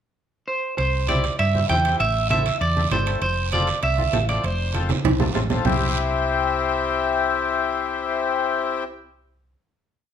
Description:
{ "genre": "latin, cumbia", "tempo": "197 BPM", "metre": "4/4", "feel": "straight", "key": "C major", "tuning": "A4 = 440 Hz", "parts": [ { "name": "electric guitar at the edge of break-up", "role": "melody", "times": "0.5-5.4 s", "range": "C5 to G5", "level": "-23 LUFS", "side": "right 3 dB", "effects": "spring reverb" }, { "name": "hollow-body short-scale fingered electric bass", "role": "bass", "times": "0.8-9.5 s", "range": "F1 to G2", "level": "-25 LUFS", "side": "equal", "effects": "none" }, { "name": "guiro", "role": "percussion", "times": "0.8-5.7 s", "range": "none", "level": "-34 LUFS", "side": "right 8 dB", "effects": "none" }, { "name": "timbales", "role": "percussion", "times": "0.8-5.7 s", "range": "none", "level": "-28 LUFS", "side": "right 5 dB", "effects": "none" }, { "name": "accordion", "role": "accompaniment", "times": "1.1-8.8 s", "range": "C4 to A4", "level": "-23 LUFS", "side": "left 6 dB", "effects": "none" }, { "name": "congas", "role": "percussion", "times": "1.1-5.7 s", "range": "none", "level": "-27 LUFS", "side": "right 2 dB", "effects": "none" } ], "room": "moderate large studio reverb, RT60 0.8 s", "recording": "minimal, uncompressed stereo recording", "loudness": "-19 LUFS", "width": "side -8 dB against mid", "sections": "0.0-0.8 pickup bar; 0.8-5.7 A section; 5.7-8.1 final chord", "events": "drum fill 4.7-5.7", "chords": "0.0 N.C.; 0.8 C; 2.0 Am; 3.2 F; 5.7 C" }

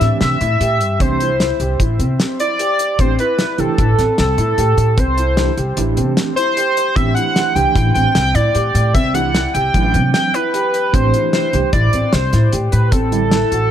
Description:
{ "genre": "progressive instrumental, band music in an uneven meter", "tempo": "151 BPM", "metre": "5/4", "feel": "straight", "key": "A dorian", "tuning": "A4 = 441 Hz", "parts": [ { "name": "pulse-width lead", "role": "melody", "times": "0.0-13.7 s", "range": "A4 to G5", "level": "-17 LUFS", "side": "equal", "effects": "chorus, dub echo" }, { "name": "overdriven tine electric piano", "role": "accompaniment", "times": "0.0-13.4 s", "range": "D3 to G4", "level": "-24 LUFS", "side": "right 8 dB", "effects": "fast tremolo, dub echo" }, { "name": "warm concert grand piano", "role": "arpeggios", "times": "0.0-13.7 s", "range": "C4 to G4", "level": "-23 LUFS", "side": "left 2 dB", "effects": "dub echo" }, { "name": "upright bass", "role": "bass", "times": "0.0-13.7 s", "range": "A1 to C3", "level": "-17 LUFS", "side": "equal", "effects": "none" }, { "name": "cloth-damped thuddy drum kit", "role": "drums", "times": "0.0-13.6 s", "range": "hi-hat, kick drum, snare drum", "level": "-19 LUFS", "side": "equal", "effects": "none" } ], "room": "light reverb", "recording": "echo-heavy mix", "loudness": "-13 LUFS", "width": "side -10 dB against mid", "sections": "0.0-13.7 A section", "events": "none", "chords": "0.0 Am7; 8.9 C; 10.9 Am7; 12.9 Am" }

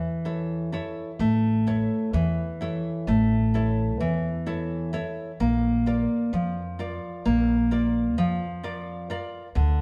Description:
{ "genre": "greek folk, Greek bouzouki band", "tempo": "129 BPM (eighths)", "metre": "9/8", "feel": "straight", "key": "unclear", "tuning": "A4 = 443 Hz", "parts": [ { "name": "nylon-string guitar", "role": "accompaniment", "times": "0.0-9.8 s", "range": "D3 to D5", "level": "-27 LUFS", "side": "equal", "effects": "none" }, { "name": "upright bass", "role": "bass", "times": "0.0-9.8 s", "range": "A1 to F2", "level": "-30 LUFS", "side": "equal", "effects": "none" } ], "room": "moderate stone room reverb, RT60 1.4 s", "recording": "band playing live in one room", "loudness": "-26 LUFS", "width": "mono", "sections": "0.0-1.2 A section; 1.2-9.8 B section", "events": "none", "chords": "0.0 A; 5.4 Bb" }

